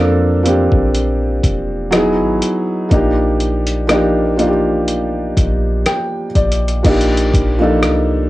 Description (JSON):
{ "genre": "contemporary R&B", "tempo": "61 BPM", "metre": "4/4", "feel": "swing 54% on 16ths", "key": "unclear", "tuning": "A4 = 441 Hz", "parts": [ { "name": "felt-muted upright piano", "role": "accompaniment", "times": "0.0-8.3 s", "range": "F3 to G5", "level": "-15 LUFS", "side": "equal", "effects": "cassette tape" }, { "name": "soft 808-style bass", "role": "bass", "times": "0.0-8.3 s", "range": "E1 to F2", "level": "-18 LUFS", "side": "equal", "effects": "none" }, { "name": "dusty soul sampler-style drum kit", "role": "drums", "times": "0.5-8.1 s", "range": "crash cymbal, hi-hat, kick drum, rim click", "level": "-18 LUFS", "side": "equal", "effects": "cassette tape" } ], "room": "light reverb", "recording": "home recording on cassette", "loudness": "-13 LUFS", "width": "side -17 dB against mid", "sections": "0.0-6.8 A section; 6.8-8.3 B section", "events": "felt piano fill 5.4-6.8", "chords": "0.0 Bbmaj7; 1.9 Emaj9; 2.9 Ebmaj9/Bb" }